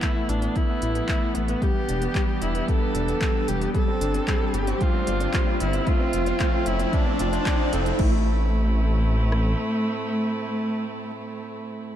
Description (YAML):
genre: piano and strings electronica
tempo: 113 BPM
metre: 4/4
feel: straight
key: A minor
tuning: A4 = 439 Hz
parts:
  - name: warm viola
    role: melody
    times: 0.0-12.0 s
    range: A3 to A4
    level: -28 LUFS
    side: equal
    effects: tape echo, shimmer reverb
  - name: muted string quartet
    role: sustained chords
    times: 0.0-12.0 s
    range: A2 to G4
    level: -33 LUFS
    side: right 2 dB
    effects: sidechain pumping, shimmer reverb
  - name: dark concert grand piano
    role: riff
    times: 0.0-12.0 s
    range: G3 to F5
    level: -29 LUFS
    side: left 1 dB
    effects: tape echo, shimmer reverb
  - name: deep house drum kit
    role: drums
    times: 0.0-9.4 s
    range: kick drum, rim click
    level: -24 LUFS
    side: equal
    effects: none
  - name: deep house drum kit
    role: drums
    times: 0.0-8.1 s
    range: crash cymbal, handclaps, hi-hat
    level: -34 LUFS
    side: equal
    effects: none
  - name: riser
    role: sound effects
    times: 1.8-8.0 s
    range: none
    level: -34 LUFS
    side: equal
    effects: none
  - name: dark detuned saw bass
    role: bass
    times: 0.3-9.5 s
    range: E1 to A1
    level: -24 LUFS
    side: equal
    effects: sidechain pumping
room: moderate lush hall reverb, RT60 2.3 s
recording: dark, warm production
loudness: -21 LUFS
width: side -10 dB against mid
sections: 0.0-8.0 A section; 8.0-12.0 B section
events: build-up 0.0-8.0; riser 1.8-8.0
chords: 0.0 Asus2; 1.6 Em7; 3.7 Gsus4; 5.9 F; 8.0 Am